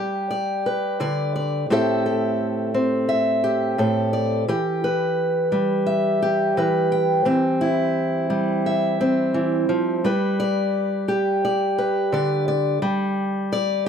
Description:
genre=folk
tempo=86 BPM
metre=4/4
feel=straight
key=unclear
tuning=A4 = 440 Hz
part: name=fingerpicked steel-string acoustic guitar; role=solo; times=0.0-13.9 s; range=A2 to G5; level=-19 LUFS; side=equal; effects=none
room=studio reverb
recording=dry, close 1970s-style studio recording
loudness=-19 LUFS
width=side -7 dB against mid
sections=0.0-12.8 A section; 12.8-13.9 B section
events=none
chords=0.0 G; 1.7 Am7; 4.5 Em; 7.3 C/E; 10.0 G; 12.8 G5

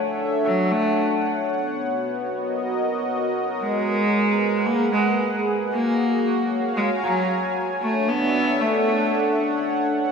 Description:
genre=IDM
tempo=114 BPM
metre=4/4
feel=straight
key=unclear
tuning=A4 = 441 Hz
part: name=rich cello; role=melody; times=0.0-9.4 s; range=F#3 to B3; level=-23 LUFS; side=equal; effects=diffuse ambient delay
part: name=warm analog pad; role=sustained chords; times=0.0-10.1 s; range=G#3 to A#5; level=-22 LUFS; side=equal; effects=chorus
room=wet plate reverb, RT60 2.8 s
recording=dreamy mix soaked in reverb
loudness=-20 LUFS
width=side -6 dB against mid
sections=0.0-10.1 A section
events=none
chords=0.0 Dmaj7; 1.5 Bmaj7; 3.6 G#m7; 5.7 F#maj7; 7.8 Dmaj7

